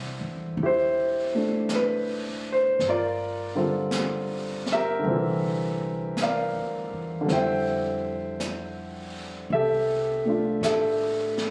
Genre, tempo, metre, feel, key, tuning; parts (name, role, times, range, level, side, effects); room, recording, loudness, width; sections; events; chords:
jazz ballad; 54 BPM; 4/4; swing 68% on 8ths; A4 = 440 Hz
warm concert grand piano; accompaniment; 0.0-11.5 s; D3 to G5; -27 LUFS; equal
upright bass; bass; 0.0-11.5 s; E1 to A2; -38 LUFS; equal
jazz brush drum kit; drums; 0.6-11.5 s; brushed snare drum, hi-hat, snare drum; -38 LUFS; equal
light reverb; recorded on a phone in the room, club reverb, compression; -26 LUFS; mono
0.0-11.5 A section
0.0 Am7; 2.8 Gm7; 5.0 C9; 7.3 Fmaj13